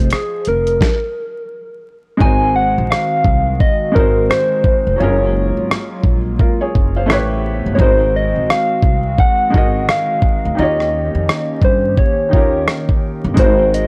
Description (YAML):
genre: lo-fi hip hop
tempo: 86 BPM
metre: 4/4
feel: swing 62% on 16ths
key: unclear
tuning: A4 = 439 Hz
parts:
  - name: soft struck synth lead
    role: melody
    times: 0.0-13.9 s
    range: Ab4 to Ab5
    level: -19 LUFS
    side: equal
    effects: chorus, tremolo, low-pass filter, analog delay
  - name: felt-muted upright piano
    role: accompaniment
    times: 0.0-13.9 s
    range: Eb3 to F5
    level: -24 LUFS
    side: equal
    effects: cassette tape, low-pass filter
  - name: upright bass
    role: bass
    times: 0.0-13.9 s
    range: F1 to G2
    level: -21 LUFS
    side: equal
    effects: tube saturation
  - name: dusty soul sampler-style drum kit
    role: drums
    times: 0.0-13.9 s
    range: hi-hat, kick drum, rim click, snare drum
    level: -17 LUFS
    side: equal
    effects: none
  - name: hollow soft pad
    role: sustained chords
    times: 2.2-13.9 s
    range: C#3 to Ab4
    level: -27 LUFS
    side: equal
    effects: chorus, low-pass filter
room: digital ambience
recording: dry, gritty hardware recording, vinyl crackle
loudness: -15 LUFS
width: mono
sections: 0.0-2.2 A section; 2.2-13.9 B section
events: stop 0.8-2.2; hi-hats muted 2.2-13.4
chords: 0.0 Fm7; 0.8 N.C.; 2.2 Ab7; 5.0 Gbmaj9; 7.1 A9; 7.8 Ab7; 10.6 Eb7; 13.4 Ab7